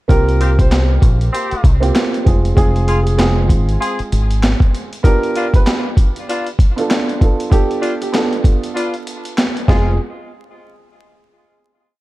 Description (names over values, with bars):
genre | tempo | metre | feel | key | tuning
hip hop, boom-bap hip-hop | 97 BPM | 4/4 | swing 58% on 16ths | unclear | A4 = 440 Hz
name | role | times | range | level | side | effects
clear upright piano | melody | 0.1-10.0 s | G4 to C5 | -23 LUFS | right 1 dB | high-pass filter, low-pass filter, digital delay
dark upright piano | accompaniment | 0.1-9.9 s | Ab3 to A4 | -21 LUFS | right 3 dB | cassette tape, high-pass filter, low-pass filter
deep dub fingered electric bass | bass | 0.1-4.5, 9.7-10.0 s | F1 to C2 | -15 LUFS | equal | none
boom bap sampler-style drum kit | drums | 0.1-9.9 s | handclaps, hi-hat, kick drum, snare drum | -14 LUFS | equal | none
dark horn section | stabs | 0.4-9.9 s | C3 to Ab4 | -24 LUFS | left 2 dB | high-pass filter, low-pass filter, digital delay
room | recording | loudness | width
little or no reverb | dark, warm production, vinyl crackle | -13 LUFS | side -18 dB against mid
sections
0.1-10.0 hook; 10.0-12.0 final hit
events
kick muted 8.8-10.0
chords
0.1 C7sus4; 2.3 Fm; 5.0 G7; 9.7 Fm; 10.0 N.C.